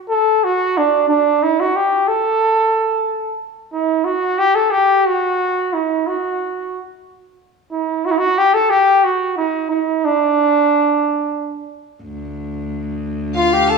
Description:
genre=Persian modal ensemble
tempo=60 BPM (dotted quarters)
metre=6/8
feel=straight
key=D dastgah homayun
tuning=A4 = 440 Hz
part: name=dark trumpet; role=melody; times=0.1-13.8 s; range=D4 to A4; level=-14 LUFS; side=right 1 dB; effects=none
part: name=clear cello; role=drone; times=12.0-13.8 s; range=D2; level=-24 LUFS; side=left 1 dB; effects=none
part: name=rich chamber violin section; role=second line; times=13.4-13.8 s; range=F5 to A5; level=-16 LUFS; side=left 5 dB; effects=none
room=wet recital hall reverb, RT60 1.4 s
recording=worn, warbling old tape, cassette tape, warbly pitch drift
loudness=-14 LUFS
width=side -4 dB against mid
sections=0.0-12.0 A section; 12.0-13.8 B section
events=none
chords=none

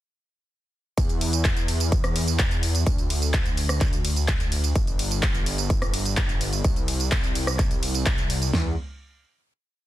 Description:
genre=EDM, festival progressive house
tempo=127 BPM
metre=4/4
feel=straight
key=E minor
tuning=A4 = 437 Hz
part: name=wide detuned saw bass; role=bass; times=1.0-8.8 s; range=G1 to E2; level=-25 LUFS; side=equal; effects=chorus, sidechain pumping
part: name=big-room dance drum kit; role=drums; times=1.0-8.6 s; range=kick drum, snare drum, toms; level=-24 LUFS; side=equal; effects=none
part: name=big-room dance drum kit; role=drums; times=1.0-8.5 s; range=handclaps, hi-hat, ride cymbal, rim click, tambourine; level=-28 LUFS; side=right 1 dB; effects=none
room=little or no reverb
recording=dense, heavily limited modern master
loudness=-21 LUFS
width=side -14 dB against mid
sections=1.0-8.5 drop; 8.5-9.9 final note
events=drop 1.0-8.5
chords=none

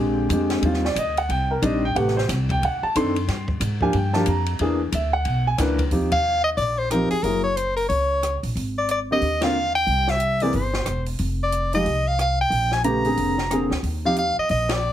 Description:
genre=jazz, small-group swing and bop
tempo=182 BPM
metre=4/4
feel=swing 62% on 8ths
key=Eb major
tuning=A4 = 440 Hz
part: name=warm grand piano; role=accompaniment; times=0.0-14.2 s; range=C3 to C6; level=-22 LUFS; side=equal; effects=none
part: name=upright bass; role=bass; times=0.0-14.9 s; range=E1 to Ab2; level=-25 LUFS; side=equal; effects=none
part: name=compact cocktail drum kit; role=drums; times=0.3-14.8 s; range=hi-hat, kick drum, ride cymbal, rim click, snare drum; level=-31 LUFS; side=equal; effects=none
part: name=clear soprano saxophone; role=melody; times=6.1-14.9 s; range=Ab4 to Bb5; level=-22 LUFS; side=left 1 dB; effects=none
room=moderate club reverb, RT60 0.6 s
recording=heavily compressed radio sound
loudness=-20 LUFS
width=side -11 dB against mid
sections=0.0-5.9 A section; 5.9-14.9 B section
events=band accent 6.1, 9.4, 14.7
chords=0.0 Bb13; 0.6 Eb69; 2.0 Am9; 2.6 D7b9; 3.3 Gm7; 4.6 E7#11; 5.9 Eb69; 7.2 Gb9; 8.6 Abadd9(#11); 9.9 C; 11.2 F7(no3); 12.5 Bb9; 13.8 Ebsus2

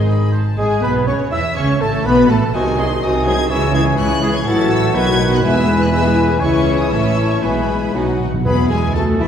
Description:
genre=quick classical-period movement for symphony orchestra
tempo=122 BPM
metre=2/4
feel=rubato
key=C# minor, E major from 4.5 s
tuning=A4 = 441 Hz
part: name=clear studio violin section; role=melody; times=0.0-9.3 s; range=E5 to A6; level=-26 LUFS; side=left 2 dB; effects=none
part: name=mellow clarinet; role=second line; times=0.0-9.3 s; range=D#4 to E5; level=-26 LUFS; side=equal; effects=none
part: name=rich studio violin section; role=second line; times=0.0-9.3 s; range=D#4 to G#5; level=-27 LUFS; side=left 2 dB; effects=none
part: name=silver concert flute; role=second line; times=0.0-9.3 s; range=E5 to E6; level=-26 LUFS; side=left 2 dB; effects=none
part: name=mellow bassoon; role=accompaniment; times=0.0-8.2 s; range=D#3 to E4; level=-24 LUFS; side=right 1 dB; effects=none
part: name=rich studio viola section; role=accompaniment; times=0.0-9.3 s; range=F#3 to G#4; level=-23 LUFS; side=equal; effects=none
part: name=mellow French horn section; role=sustained chords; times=0.0-9.3 s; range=E3 to E4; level=-21 LUFS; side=left 4 dB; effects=none
part: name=rich studio double bass section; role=bass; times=0.0-9.3 s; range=E1 to E2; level=-21 LUFS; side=right 2 dB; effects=none
part: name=warm studio cello section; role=bass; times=0.0-9.3 s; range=C#2 to B3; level=-22 LUFS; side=right 2 dB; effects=none
part: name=timpani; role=percussion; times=0.0-0.3, 7.9-8.9 s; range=E2 to B2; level=-21 LUFS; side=right 1 dB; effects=none
part: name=warm oboe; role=second line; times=0.1-9.3 s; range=G#4 to E5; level=-27 LUFS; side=equal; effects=none
part: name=mellow trumpet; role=stabs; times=0.6-8.1 s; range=G#4 to E5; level=-24 LUFS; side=right 2 dB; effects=none
room=wet scoring stage reverb, RT60 1.8 s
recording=heard from further back in the room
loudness=-13 LUFS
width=side -8 dB against mid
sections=0.6-8.5 A section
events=timpani fill 7.9-8.5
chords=0.0 G#5; 0.6 C#m; 1.6 Aadd9; 2.5 G#7/B#; 3.5 C#m; 4.5 F#m7/A; 4.9 B; 5.4 E; 6.4 C#m; 6.9 A; 7.4 E/B; 7.9 B; 8.5 E

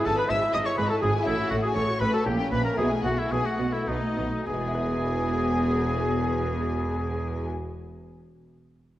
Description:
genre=classical, baroque-style concerto movement with solo episodes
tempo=101-125 BPM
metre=3/4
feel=straight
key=E major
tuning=A4 = 440 Hz
part: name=clear oboe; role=melody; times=0.0-7.5 s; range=D#4 to E5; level=-30 LUFS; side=left 1 dB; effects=none
part: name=clear chamber violin section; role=second line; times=0.0-7.5 s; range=D#4 to E5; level=-32 LUFS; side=left 2 dB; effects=none
part: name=lute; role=accompaniment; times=0.0-7.8 s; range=G#2 to B4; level=-35 LUFS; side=equal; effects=none
part: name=warm symphonic viola section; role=accompaniment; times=0.0-7.5 s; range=A3 to A4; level=-31 LUFS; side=equal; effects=none
part: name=rich chamber violin section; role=melody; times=0.1-7.5 s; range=D#5 to E6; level=-35 LUFS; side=left 3 dB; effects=none
part: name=clear chamber cello section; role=bass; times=0.1-7.5 s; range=E2 to B2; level=-31 LUFS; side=right 1 dB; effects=none
part: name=rich symphonic double bass section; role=bass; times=0.1-7.5 s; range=E1 to B1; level=-32 LUFS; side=right 2 dB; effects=none
room=wet concert hall reverb, RT60 2.0 s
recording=worn, warbling old tape, cassette tape, warbly pitch drift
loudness=-23 LUFS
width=side -14 dB against mid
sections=0.0-4.5 A section; 4.5-8.0 B section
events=slowing down 0.5-4.5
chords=0.0 E/G#; 1.3 F#m/A; 2.3 A#dim7; 2.8 B7sus4; 3.9 B7; 4.5 E

